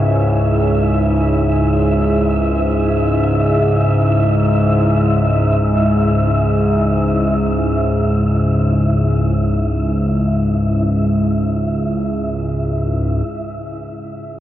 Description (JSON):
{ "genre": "dark ambient drone", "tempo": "free time", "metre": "none", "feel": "none", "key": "C# minor", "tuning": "A4 = 440 Hz", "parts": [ { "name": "deep dark ambient pad", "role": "sustained chords", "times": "0.0-14.4 s", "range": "C#4 to E5", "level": "-29 LUFS", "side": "right 1 dB", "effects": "chorus, built-in reverb" }, { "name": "analog drone", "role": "drone", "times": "0.0-14.4 s", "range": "C#2 to G#2", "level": "-15 LUFS", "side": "equal", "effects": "chorus" }, { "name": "wind-like tuned noise texture", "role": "texture", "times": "0.0-13.3 s", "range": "E4 to E5", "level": "-22 LUFS", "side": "equal", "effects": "built-in reverb" } ], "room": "wet huge ambient reverb, RT60 7.8 s", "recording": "worn, warbling old tape, cassette tape, warbly pitch drift", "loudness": "-14 LUFS", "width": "side -12 dB against mid", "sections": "0.0-13.3 A section; 13.3-14.4 B section", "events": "fade-out on ambient pad 0.0-13.3", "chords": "0.0 C#m", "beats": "free time" }